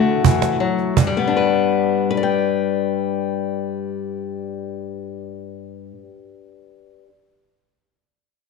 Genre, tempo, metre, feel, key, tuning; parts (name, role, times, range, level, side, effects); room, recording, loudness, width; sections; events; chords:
acoustic folk duo or small band; 79 BPM; 3/4; straight; G major; A4 = 440 Hz
fingerpicked steel-string acoustic guitar; accompaniment; 0.0-7.1 s; G2 to G5; -19 LUFS; left 6 dB
cajon; percussion; 0.2-1.3 s; -19 LUFS; right 6 dB
wet echo chamber reverb, RT60 1.5 s, small room reverb; 1960s-style stereo with parts hard left and right; -18 LUFS; side -4 dB against mid
1.0-5.5 A section
0.0 Dadd9; 1.0 G